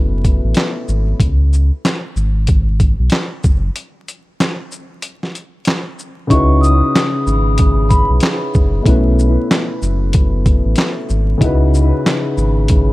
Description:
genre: hip hop, boom-bap hip-hop.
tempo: 94 BPM.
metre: 4/4.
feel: swing 60% on 16ths.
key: C# minor.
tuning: A4 = 440 Hz.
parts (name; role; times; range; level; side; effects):
dark upright piano; accompaniment; 0.0-1.2, 6.3-12.9 s; B2 to B4; -18 LUFS; left 2 dB; cassette tape, analog delay.
sub bass with octave; bass; 0.0-12.9 s; F#1 to C#2; -14 LUFS; equal; none.
boom bap sampler-style drum kit; drums; 0.2-12.9 s; handclaps, hi-hat, kick drum, shaker, snare drum; -15 LUFS; equal; vintage 12-bit sampler grit.
vibraphone with soft mallets; melody; 6.3-8.1 s; B5 to D#6; -19 LUFS; equal; analog delay.
room: little or no reverb.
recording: echo-heavy mix, vinyl crackle.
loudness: -12 LUFS.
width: side -19 dB against mid.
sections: 0.0-6.3 A section; 6.3-12.9 B section.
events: break 3.8-6.3.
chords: 0.0 B7sus4; 1.2 C#sus4; 3.8 N.C.; 6.3 C#m11; 8.9 B7sus4; 11.4 C#m11.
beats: 0.56 | 1.20 1.83 2.47 3.11 | 3.75 4.39 5.03 5.67 | 6.30 6.94 7.58 8.22 | 8.86 9.49 10.13 10.77 | 11.41 12.05 12.69.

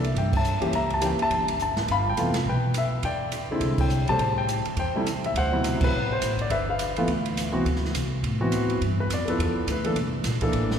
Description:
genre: jazz piano trio.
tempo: 208 BPM.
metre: 4/4.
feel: swing 60% on 8ths.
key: G mixolydian.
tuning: A4 = 440 Hz.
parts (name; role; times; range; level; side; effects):
warm concert grand piano; melody; 0.0-10.8 s; B2 to B5; -25 LUFS; left 1 dB; none.
upright bass; bass; 0.0-10.8 s; F1 to A2; -28 LUFS; equal; none.
open jazz drum kit; drums; 0.0-10.8 s; crash cymbal, hi-hat, kick drum, ride cymbal, snare drum; -31 LUFS; right 2 dB; none.
room: wet church reverb, RT60 3.6 s.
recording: recorded in a church or concert hall.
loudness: -22 LUFS.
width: side -8 dB against mid.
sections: 0.0-8.8 A section; 8.8-10.8 B section.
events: band accent 0.3, 3.8, 5.8; grand piano solo 8.8-10.8.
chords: 0.0 C13; 0.7 C#dim7; 1.9 G13; 3.0 E7alt; 4.2 Am7; 5.3 D13; 6.5 G13; 7.7 D13; 8.8 G13; 10.0 C13.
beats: 0.16 0.45 | 0.74 1.02 1.31 1.60 | 1.89 2.18 2.47 2.75 | 3.04 3.33 3.62 3.91 | 4.20 4.48 4.77 5.06 | 5.35 5.64 5.92 6.21 | 6.50 6.79 7.08 7.37 | 7.66 7.94 8.23 8.52 | 8.81 9.10 9.39 9.67 | 9.96 10.25 10.54.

